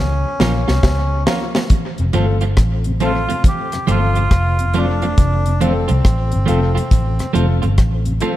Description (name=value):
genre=roots reggae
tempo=69 BPM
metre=4/4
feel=swing 64% on 16ths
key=F major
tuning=A4 = 440 Hz
part: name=melodica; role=melody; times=0.0-7.3 s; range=C4 to G4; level=-23 LUFS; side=equal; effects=tape echo
part: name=vintage muted fingered electric bass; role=bass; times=0.0-8.2 s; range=F1 to Db2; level=-17 LUFS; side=equal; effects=none
part: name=clean electric guitar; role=accompaniment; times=0.4-8.3 s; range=F3 to F4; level=-24 LUFS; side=right 5 dB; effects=tape echo
part: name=bright baby grand piano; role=stabs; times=0.4-8.4 s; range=A3 to Bb4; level=-26 LUFS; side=left 3 dB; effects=none
part: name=deep reggae drum kit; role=drums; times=0.4-8.4 s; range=hi-hat, kick drum, rim click, snare drum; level=-16 LUFS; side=equal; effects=none
part: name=congas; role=percussion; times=0.4-7.6 s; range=none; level=-28 LUFS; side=right 4 dB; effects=none
part: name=mellow tonewheel organ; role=accompaniment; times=2.0-8.3 s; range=F2 to C4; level=-26 LUFS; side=left 2 dB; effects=chorus vibrato, slow rotary speaker, dub echo
room=light reverb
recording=none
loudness=-14 LUFS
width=side -14 dB against mid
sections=0.0-8.4 A section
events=drum fill 0.0-1.7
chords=0.0 Bbm; 1.7 F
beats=0.83 | 1.70 2.57 3.44 4.31 | 5.18 6.05 6.92 7.79